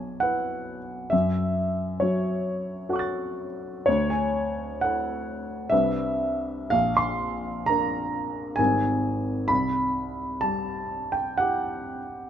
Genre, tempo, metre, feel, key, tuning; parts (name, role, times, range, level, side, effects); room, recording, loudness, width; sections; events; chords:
classical, impressionist solo piano; 64 BPM; 3/4; uneven beats, rubato; A4 = 439 Hz
clear baby grand piano; solo; 0.0-12.3 s; G#1 to A6; -24 LUFS; equal
light reverb; -24 LUFS; side -9 dB against mid
0.0-12.3 A section
0.0 Bsus4; 1.1 F#m7; 3.9 Dadd9; 5.7 Cmaj9; 6.7 A#; 8.6 G#maj9; 9.5 C